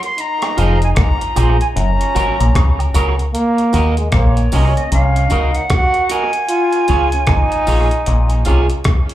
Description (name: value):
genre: roots reggae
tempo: 76 BPM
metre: 4/4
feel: swing 61% on 16ths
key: Eb dorian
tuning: A4 = 440 Hz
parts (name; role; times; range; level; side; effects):
- silver concert flute; melody; 0.0-8.5 s; Db5 to C6; -20 LUFS; right 1 dB; tape echo, slapback echo
- breakbeat sampler-style drum kit; drums; 0.0-9.1 s; hi-hat, kick drum, rim click; -19 LUFS; equal; analog delay
- bright trombone; second line; 0.2-8.6 s; Ab3 to Gb4; -20 LUFS; right 1 dB; tape echo, slapback echo
- woodblock and tambourine; percussion; 0.4-8.7 s; none; -31 LUFS; right 5 dB; slapback echo
- electric guitar at the edge of break-up; accompaniment; 0.6-8.7 s; F4 to Eb5; -24 LUFS; right 4 dB; analog chorus, tape echo, slapback echo
- auto-wah clav; riff; 0.6-8.6 s; F2 to Eb3; -25 LUFS; left 6 dB; slapback echo
- deep dub fingered electric bass; bass; 0.6-8.7 s; F1 to Eb2; -15 LUFS; equal; none
room: light reverb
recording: live gig heard through the venue's PA, club reverb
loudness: -12 LUFS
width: side -13 dB against mid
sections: 0.0-3.3 A section; 3.3-9.1 B section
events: none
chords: 0.2 Fm; 1.8 Gb; 3.3 Ebm; 6.5 Db